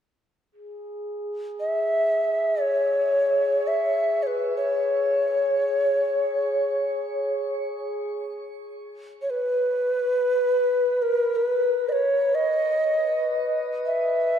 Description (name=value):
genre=world meditative, free-time meditation music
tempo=free time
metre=none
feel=none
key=C# dorian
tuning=A4 = 439 Hz
part: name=glass harmonica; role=texture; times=0.5-14.4 s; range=G#4 to B4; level=-32 LUFS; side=left 2 dB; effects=shimmer reverb
part: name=breathy mellow Native American-style cedar flute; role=melody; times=1.6-14.4 s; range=A#4 to E5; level=-22 LUFS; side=equal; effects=shimmer reverb
room=wet cathedral reverb, RT60 4.4 s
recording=dark, warm production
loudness=-21 LUFS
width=side -9 dB against mid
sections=0.4-14.4 A section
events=none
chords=none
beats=free time